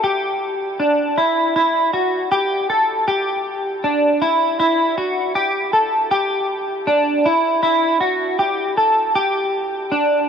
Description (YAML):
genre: dream pop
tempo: 79 BPM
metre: 4/4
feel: straight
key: unclear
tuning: A4 = 441 Hz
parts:
  - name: clean electric guitar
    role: solo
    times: 0.0-10.3 s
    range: D4 to A4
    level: -16 LUFS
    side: equal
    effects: analog chorus, tape echo
room: moderate huge ambient reverb, RT60 6.6 s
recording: dark, warm production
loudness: -16 LUFS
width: side -7 dB against mid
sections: 0.0-10.3 A section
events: none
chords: none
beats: | 0.04 0.80 1.56 2.32 | 3.08 3.84 4.59 5.36 | 6.11 6.87 7.63 8.39 | 9.15 9.91